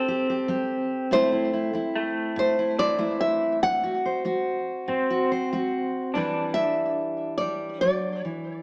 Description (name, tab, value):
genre	acoustic folk-pop ballad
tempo	48 BPM (dotted quarters)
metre	6/8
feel	straight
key	unclear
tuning	A4 = 440 Hz
part	nylon-string guitar	melody	0.0-8.6 s	A4 to F#5	-27 LUFS	equal	tape echo
part	fingerpicked steel-string acoustic guitar	accompaniment	0.0-8.6 s	A2 to C5	-31 LUFS	equal	none
part	electric guitar through a small old amp	arpeggios	0.0-8.3 s	E3 to D4	-31 LUFS	equal	tremolo
room	wet large studio reverb, RT60 1.5 s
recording	small speaker sound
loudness	-26 LUFS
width	mono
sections	0.0-6.1 A section; 6.1-8.6 B section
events	none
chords	0.0 C5; 1.1 Am; 3.6 Am6; 6.1 Em7